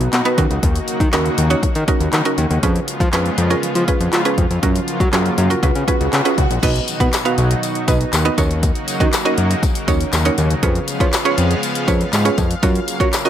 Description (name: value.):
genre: dance-pop.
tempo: 120 BPM.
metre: 4/4.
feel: straight.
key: unclear.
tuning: A4 = 442 Hz.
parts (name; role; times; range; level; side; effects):
mallet-like synth pluck; accompaniment; 0.0-13.3 s; B3 to F#5; -20 LUFS; right 4 dB; chorus.
lush unison pad; sustained chords; 0.0-13.3 s; B2 to E#5; -24 LUFS; left 1 dB; chorus, sidechain pumping.
fat analog bass; bass; 0.0-13.1 s; A#1 to F#3; -18 LUFS; left 1 dB; sidechain pumping.
deep house drum kit; drums; 0.0-13.3 s; crash cymbal, handclaps, hi-hat, kick drum, snare drum; -19 LUFS; left 1 dB; none.
swell; sound effects; 5.1-6.6 s; none; -27 LUFS; equal; none.
tambourine; percussion; 6.9-13.2 s; none; -29 LUFS; left 12 dB; none.
room: digital ambience.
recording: none.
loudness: -14 LUFS.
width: side -10 dB against mid.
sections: 0.0-6.6 A section; 6.6-13.3 B section.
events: swell 5.1-6.6.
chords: 0.4 D#m7; 2.6 C#7/E#; 4.6 F#maj7; 5.6 C#7; 6.6 B; 8.4 D#m7; 10.6 C#7/E#; 12.6 F#maj7.